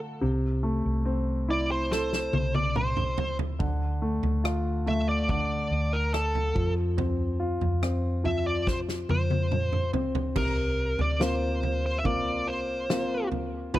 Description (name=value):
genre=pop ballad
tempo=71 BPM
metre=4/4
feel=straight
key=unclear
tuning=A4 = 442 Hz
part: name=warm grand piano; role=accompaniment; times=0.0-13.8 s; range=C3 to A4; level=-31 LUFS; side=left 1 dB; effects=none
part: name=hollow-body short-scale fingered electric bass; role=bass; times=0.2-13.8 s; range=F1 to F2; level=-29 LUFS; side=equal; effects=none
part: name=smooth overdriven lead guitar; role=melody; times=1.5-13.8 s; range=A4 to E5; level=-30 LUFS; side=equal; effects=none
part: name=natural country drum kit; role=drums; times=1.9-13.8 s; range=crash cymbal, kick drum, rim click, snare drum, toms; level=-31 LUFS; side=right 1 dB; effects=none
room=small room ambience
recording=none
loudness=-25 LUFS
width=side -15 dB against mid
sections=0.0-10.4 A section; 10.4-13.8 B section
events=drum fill 1.9-3.6, 8.7-10.4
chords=0.2 Am/C; 3.6 Dm; 6.6 F5; 10.4 C7sus4